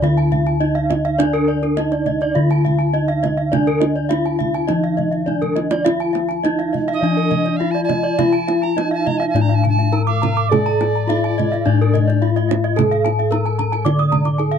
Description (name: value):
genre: Balinese gamelan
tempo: 103 BPM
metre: 4/4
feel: straight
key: D pelog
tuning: A4 = 440 Hz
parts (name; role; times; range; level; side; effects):
- gamelan-type bronze metallophone; melody; 0.0-14.6 s; D4 to D5; -22 LUFS; left 1 dB; none
- gamelan-type bronze metallophone; arpeggios; 0.0-14.5 s; Bb4-40c to D6; -25 LUFS; left 1 dB; none
- gamelan-type bronze metallophone; arpeggios; 0.0-14.6 s; Bb4-40c to Eb6; -24 LUFS; right 2 dB; none
- gamelan-type bossed gongs; bass; 0.0-14.6 s; A2-45c to A4-45c; -19 LUFS; left 2 dB; none
- kendang; percussion; 0.0-14.6 s; none; -24 LUFS; right 7 dB; none
- bright reedy soprano recorder; second line; 6.9-12.3 s; D5 to Bb5-31c; -26 LUFS; right 7 dB; none
room: light reverb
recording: dark, warm production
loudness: -15 LUFS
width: side -7 dB against mid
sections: 0.0-14.6 A section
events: drum fill 5.3-5.9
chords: none